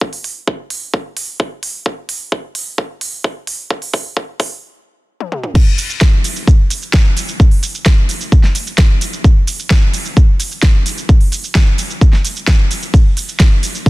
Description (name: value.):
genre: EDM.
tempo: 130 BPM.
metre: 4/4.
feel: straight.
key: none.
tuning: none.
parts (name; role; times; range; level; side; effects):
electronic kick drum; drums; 0.0-13.9 s; none; -10 LUFS; equal; high-pass filter on kick, high-pass filter on room.
pop drum kit; drums; 0.1-13.9 s; crash cymbal, hi-hat, ride cymbal, shaker, snare drum, toms; -19 LUFS; right 1 dB; high-pass filter on hats, high-pass filter on toms, high-pass filter on cymbals, high-pass filter on perc, high-pass filter on snare.
room: digital ambience.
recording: dense, heavily limited modern master.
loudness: -12 LUFS.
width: side -20 dB against mid.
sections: 0.0-5.6 A section; 5.6-13.9 B section.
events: build-up 0.0-5.6; drum fill 1.9-4.6, 5.2-5.6; stop 4.6-5.6; drop 5.6-13.9.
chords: none.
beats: | 0.01 0.47 0.94 1.40 | 1.86 2.32 2.78 3.25 | 3.71 4.17 4.63 5.09 | 5.55 6.01 6.47 6.94 | 7.40 7.86 8.32 8.78 | 9.24 9.71 10.17 10.63 | 11.09 11.55 12.01 12.47 | 12.94 13.40 13.86.